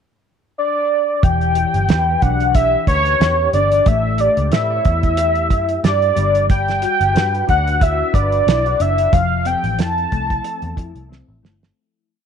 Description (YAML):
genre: indie pop, bedroom pop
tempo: 91 BPM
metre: 4/4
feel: swing 55% on 16ths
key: unclear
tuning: A4 = 438 Hz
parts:
  - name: warm velvety synth lead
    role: melody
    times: 0.6-11.1 s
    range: C#5 to A5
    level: -17 LUFS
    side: equal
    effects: wide subtle chorus, slapback echo
  - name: mellow electric guitar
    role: accompaniment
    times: 1.2-12.3 s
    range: E3 to C#5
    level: -25 LUFS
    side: left 11 dB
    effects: analog chorus, warbly pitch drift
  - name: vintage muted picked electric bass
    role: bass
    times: 1.2-11.7 s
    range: E1 to A2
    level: -20 LUFS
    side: equal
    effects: none
  - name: cloth-damped thuddy drum kit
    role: drums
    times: 1.2-11.8 s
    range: hi-hat, kick drum, snare drum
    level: -18 LUFS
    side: right 2 dB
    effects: none
room: light reverb, small room ambience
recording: 1960s-style stereo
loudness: -14 LUFS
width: side -7 dB against mid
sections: 0.0-1.2 pickup bar; 1.2-11.8 A section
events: fade-out 9.1-11.8; drum fill 11.1-11.8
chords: 0.0 N.C.; 1.2 Em7; 3.9 A7; 6.2 Gmaj7; 9.1 Fmaj7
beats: 0.57 | 1.23 1.89 2.55 3.21 | 3.87 4.52 5.18 5.84 | 6.50 7.16 7.81 8.47 | 9.13 9.79 10.45 11.11